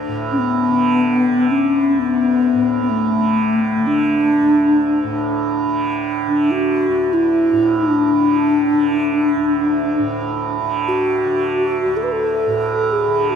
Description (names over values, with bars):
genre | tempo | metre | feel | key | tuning
world meditative, free-time meditation music | free time | none | none | D major | A4 = 440 Hz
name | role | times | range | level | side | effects
tanpura | drone | 0.0-13.4 s | D2 to D3 | -22 LUFS | right 4 dB | none
mellow hollow bass flute | melody | 0.3-13.4 s | A3 to B4 | -16 LUFS | left 1 dB | diffuse ambient delay
room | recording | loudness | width
wet huge ambient reverb, RT60 4.9 s | none | -15 LUFS | side -7 dB against mid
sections
0.0-13.4 A section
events
none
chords
none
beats
free time